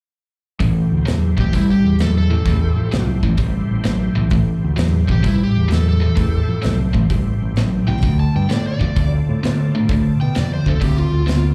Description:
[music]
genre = blues rock power trio and southern rock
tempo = 129 BPM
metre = 4/4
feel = swing 67% on 8ths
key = A minor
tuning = A4 = 439 Hz
[part]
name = overdriven tonewheel organ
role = sustained chords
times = 0.6-11.5 s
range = A3 to D5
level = -37 LUFS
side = equal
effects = slow rotary speaker, chorus vibrato
[part]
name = cranked stack guitar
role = riff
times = 0.6-11.5 s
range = A2 to C4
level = -21 LUFS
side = equal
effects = overdrive, slapback echo
[part]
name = growling fingered electric bass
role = bass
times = 0.6-11.5 s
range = A1 to B2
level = -21 LUFS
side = equal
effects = overdrive
[part]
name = big rock drum kit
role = drums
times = 0.6-11.4 s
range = hi-hat, kick drum, snare drum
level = -25 LUFS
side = equal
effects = none
[part]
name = overdriven slide guitar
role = melody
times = 1.4-11.5 s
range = E4 to A5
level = -31 LUFS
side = equal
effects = slapback echo
[sound]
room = little or no reverb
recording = live gig heard through the venue's PA, club reverb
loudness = -17 LUFS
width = mono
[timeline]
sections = 0.6-11.5 A section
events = none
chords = 0.6 Am7; 8.0 Dm7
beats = | 0.61 1.07 1.53 2.00 | 2.46 2.92 3.39 3.85 | 4.32 4.78 5.25 5.71 | 6.17 6.64 7.10 7.57 | 8.03 8.50 8.96 9.43 | 9.89 10.35 10.82 11.28

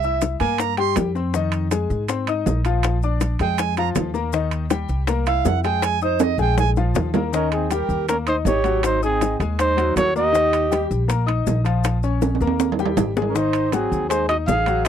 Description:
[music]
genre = Afro-Cuban jazz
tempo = 160 BPM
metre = 4/4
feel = straight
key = Eb mixolydian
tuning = A4 = 441 Hz
[part]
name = bright reedy tenor recorder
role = second line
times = 0.0-1.0, 3.4-10.9, 13.3-14.9 s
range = C4 to C6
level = -24 LUFS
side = right 19 dB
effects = none
[part]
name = clear baby grand piano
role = accompaniment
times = 0.0-14.9 s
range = Eb3 to E6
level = -24 LUFS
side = left 8 dB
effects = none
[part]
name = upright bass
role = bass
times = 0.0-14.9 s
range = Ab1 to Ab2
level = -23 LUFS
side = equal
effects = none
[part]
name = maracas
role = percussion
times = 0.0-14.9 s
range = none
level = -37 LUFS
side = left 30 dB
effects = none
[part]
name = bongos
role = percussion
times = 0.2-14.9 s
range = none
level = -26 LUFS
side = left 9 dB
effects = none
[part]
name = timbales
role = percussion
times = 0.2-14.9 s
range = none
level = -25 LUFS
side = right 10 dB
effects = none
[part]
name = dark trumpet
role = melody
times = 7.4-10.9, 13.3-14.9 s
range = G4 to F5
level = -21 LUFS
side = equal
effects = none
[sound]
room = little or no reverb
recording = dry, close 1970s-style studio recording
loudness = -18 LUFS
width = side -9 dB against mid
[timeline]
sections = 0.0-7.3 A section; 7.3-14.9 B section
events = recorder solo 0.0-7.3; drum fill 6.2-7.3, 12.2-13.4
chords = 0.0 C7; 1.3 Fm7; 2.8 Bb7; 4.3 Eb; 5.1 C7; 5.8 Bb5; 7.3 Eb7; 8.8 Ab7; 10.3 Eb; 11.8 Bbm; 12.6 Eb; 13.4 Ab7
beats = 0.22 0.59 0.97 | 1.34 1.72 2.09 2.46 | 2.84 3.21 3.59 3.96 | 4.33 4.71 5.08 5.46 | 5.83 6.21 6.58 6.96 | 7.33 7.71 8.08 8.46 | 8.84 9.21 9.59 9.96 | 10.34 10.72 11.09 11.47 | 11.85 12.22 12.60 12.97 | 13.35 13.73 14.10 14.48 | 14.86

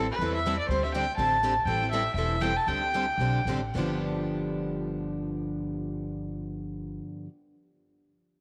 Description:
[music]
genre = acoustic string swing (jazz manouche)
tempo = 208-244 BPM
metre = 4/4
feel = swing 57% on 8ths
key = G mixolydian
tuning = A4 = 439 Hz
[part]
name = warm violin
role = melody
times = 0.0-3.5 s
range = B4 to A5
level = -30 LUFS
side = equal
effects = tape echo
[part]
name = picked plugged-in steel-string acoustic guitar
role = accompaniment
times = 0.0-7.3 s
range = G2 to A4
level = -35 LUFS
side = equal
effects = none
[part]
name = picked swing-style acoustic guitar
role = accompaniment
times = 0.0-7.3 s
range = G2 to A4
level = -39 LUFS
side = equal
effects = none
[part]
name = upright bass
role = bass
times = 0.0-7.0 s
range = E1 to E2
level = -36 LUFS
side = equal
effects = none
[sound]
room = moderate plate reverb, RT60 2.8 s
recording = none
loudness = -29 LUFS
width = mono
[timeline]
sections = 0.0-3.8 A section; 3.8-6.1 B section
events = slowing down 1.7-3.8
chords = 0.0 Am7; 0.7 D7sus4; 1.7 Am7; 2.7 D7sus4; 3.8 G7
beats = 0.19 0.44 | 0.68 0.93 1.17 1.42 | 1.67 1.91 2.16 2.41 | 2.67 2.93 3.20 3.47 | 3.76 4.05 4.33 4.62 | 4.91 5.20 5.49 5.78

